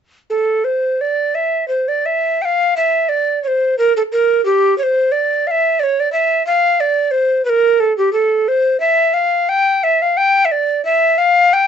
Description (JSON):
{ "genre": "classical, baroque-style fantasia for unaccompanied recorder", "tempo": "59 BPM (dotted quarters)", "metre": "6/8", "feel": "rubato", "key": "D minor", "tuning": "A4 = 440 Hz", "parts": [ { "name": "mellow tenor recorder", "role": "solo", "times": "0.3-11.7 s", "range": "G4 to G5", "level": "-13 LUFS", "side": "equal", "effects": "none" } ], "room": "light reverb", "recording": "nothing above 7.9 kHz", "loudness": "-13 LUFS", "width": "side -7 dB against mid", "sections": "0.3-11.7 A section", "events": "none", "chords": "none" }